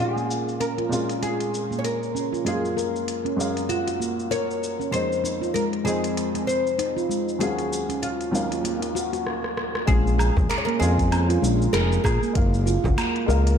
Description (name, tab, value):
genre	organic downtempo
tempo	97 BPM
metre	4/4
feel	swing 57% on 16ths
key	Bb minor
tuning	A4 = 440 Hz
part	oud	melody	0.0-13.2 s	F4 to Db5	-28 LUFS	left 2 dB	digital delay
part	felt-muted upright piano	accompaniment	0.0-13.6 s	Eb2 to F5	-30 LUFS	equal	sidechain pumping, ping-pong delay
part	organic electronic drum kit	drums	0.0-13.6 s	finger snaps, hi-hat, rim click, shaker, woodblock	-32 LUFS	equal	low-pass filter on perc, low-pass filter on hats, low-pass filter on snare, low-pass filter on room
part	handpan	arpeggios	0.2-13.6 s	Ab3 to Bb4	-27 LUFS	right 1 dB	low-pass filter, ping-pong delay
part	smooth gliding synth bass	bass	9.9-13.6 s	F1 to F2	-21 LUFS	equal	tube saturation
part	electronic kick drum	drums	9.9-12.9 s	none	-23 LUFS	equal	none
part	frame drum	percussion	10.4-13.0 s	none	-29 LUFS	right 2 dB	none
room	moderate lush hall reverb, RT60 2.9 s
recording	dark, warm production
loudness	-21 LUFS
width	side -8 dB against mid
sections	0.0-9.9 A section; 9.9-13.6 B section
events	filter sweep on drum 0.0-9.9; drum fill 9.3-9.9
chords	0.0 Bbm7; 2.5 Gbmaj7; 4.9 Fm7; 7.4 Ebm9; 9.9 Bbm7; 12.4 Gbmaj7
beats	0.60 1.22 1.84 | 2.46 3.08 3.70 4.31 | 4.93 5.55 6.17 6.79 | 7.41 8.03 8.64 9.26 | 9.88 10.50 11.12 11.74 | 12.36 12.97